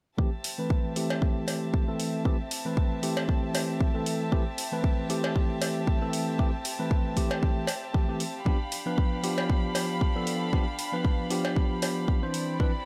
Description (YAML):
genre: nu-disco, nu disco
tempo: 116 BPM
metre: 4/4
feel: swing 56% on 16ths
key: A minor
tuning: A4 = 440 Hz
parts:
  - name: tine electric piano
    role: accompaniment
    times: 0.2-12.7 s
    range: E3 to C5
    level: -33 LUFS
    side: equal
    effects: sidechain pumping, low-pass filter, delay
  - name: warm chamber violin section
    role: sustained chords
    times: 0.2-12.9 s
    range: G3 to B5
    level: -38 LUFS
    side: equal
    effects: sidechain pumping
  - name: electronic kick drum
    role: drums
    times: 0.2-12.7 s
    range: none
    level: -28 LUFS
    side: equal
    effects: none
  - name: electronic hi-hat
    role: drums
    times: 0.4-12.5 s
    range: none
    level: -38 LUFS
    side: equal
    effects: none
  - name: cowbell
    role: percussion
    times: 1.1-11.9 s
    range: none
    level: -35 LUFS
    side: equal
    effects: none
room: light reverb, studio reverb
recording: none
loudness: -28 LUFS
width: mono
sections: 0.2-12.9 A section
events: filter sweep on tine electric piano 0.2-12.9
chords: 0.2 Am7; 8.5 G7; 12.3 Cmaj9